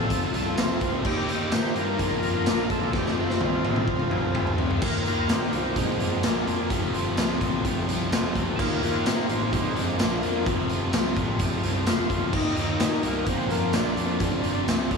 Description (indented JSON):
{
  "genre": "classic rock",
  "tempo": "128 BPM",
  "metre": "4/4",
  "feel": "straight",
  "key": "F mixolydian",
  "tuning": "A4 = 439 Hz",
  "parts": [
    { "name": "overdriven tonewheel organ", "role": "melody", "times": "0.0-14.6 s", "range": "Ab3 to C5", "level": "-30 LUFS", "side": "left 1 dB", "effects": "chorus vibrato, slow rotary speaker, slapback echo" },
    { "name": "octave-fuzz lead guitar", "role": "second line", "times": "0.0-4.6 s", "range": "C4 to G4", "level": "-35 LUFS", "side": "right 3 dB", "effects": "distortion, slapback echo" },
    { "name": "picked steel-string acoustic guitar", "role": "accompaniment", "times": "0.0-15.0 s", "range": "F2 to G4", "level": "-36 LUFS", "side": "right 6 dB", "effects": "none" },
    { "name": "crunchy overdriven guitar", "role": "riff", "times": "0.0-15.0 s", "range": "F2 to Eb4", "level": "-31 LUFS", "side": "left 1 dB", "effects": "slapback echo" },
    { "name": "tight distorted guitar", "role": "riff", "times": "0.0-15.0 s", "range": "F2 to G4", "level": "-31 LUFS", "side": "left 1 dB", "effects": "distortion, slapback echo" },
    { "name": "fuzz picked electric bass", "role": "bass", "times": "0.0-15.0 s", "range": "E1 to Bb2", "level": "-32 LUFS", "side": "left 1 dB", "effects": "overdrive" },
    { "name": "raw garage drum kit", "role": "drums", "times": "0.1-15.0 s", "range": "crash cymbal, hi-hat, kick drum, snare drum, tambourine, toms", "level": "-26 LUFS", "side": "left 1 dB", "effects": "none" }
  ],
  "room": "moderate concert hall reverb, RT60 2.1 s",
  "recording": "big arena sound, small room reverb",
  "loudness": "-22 LUFS",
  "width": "side -5 dB against mid",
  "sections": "0.0-4.8 A section; 4.8-15.0 B section",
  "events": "drum fill 2.9-4.8; tonewheel organ solo 4.8-15.0",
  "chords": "0.0 F; 1.1 Eb; 2.0 Bb; 2.9 F; 4.8 Eb; 5.8 Bb; 6.7 F; 8.6 Eb; 9.5 Bb; 10.5 F; 12.3 Eb; 13.3 Bb; 14.2 F",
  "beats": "0.10 0.58 | 1.05 1.52 2.00 2.47 | 2.94 3.41 3.88 4.35 | 4.83 5.30 5.77 6.24 | 6.71 7.18 7.65 8.12 | 8.59 9.05 9.52 9.99 | 10.46 10.93 11.40 11.87 | 12.33 12.80 13.27 13.74 | 14.20 14.67"
}